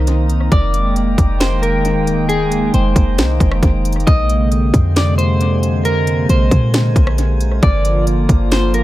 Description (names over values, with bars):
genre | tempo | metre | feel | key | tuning
hip hop, atmospheric cloud-rap | 135 BPM | 4/4 | half-time | unclear | A4 = 440 Hz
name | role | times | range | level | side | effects
electric guitar at the edge of break-up | melody | 0.0-8.8 s | Ab4 to Eb5 | -21 LUFS | equal | wide subtle chorus, analog delay
hollow soft pad | sustained chords | 0.0-8.8 s | C3 to G5 | -19 LUFS | equal | chorus, sidechain pumping
clean 808-style bass | bass | 0.0-8.8 s | Eb1 to Bb2 | -16 LUFS | equal | none
drifting glass-harmonics texture | texture | 0.0-8.8 s | Ab3 to Ab5 | -28 LUFS | right 2 dB | chorus, built-in reverb
trap drum kit | drums | 0.1-8.8 s | hi-hat, kick drum, rim click, snare drum | -16 LUFS | equal | analog delay
room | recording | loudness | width
little or no reverb | echo-heavy mix | -12 LUFS | side -16 dB against mid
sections
0.0-8.8 A section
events
none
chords
0.0 Cm7; 0.5 Fm11; 4.1 Bb9; 7.6 Gm7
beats
0.07 | 0.52 0.96 1.41 1.85 | 2.29 2.74 3.18 3.63 | 4.07 4.52 4.96 5.41 | 5.85 6.29 6.74 7.18 | 7.63 8.07 8.52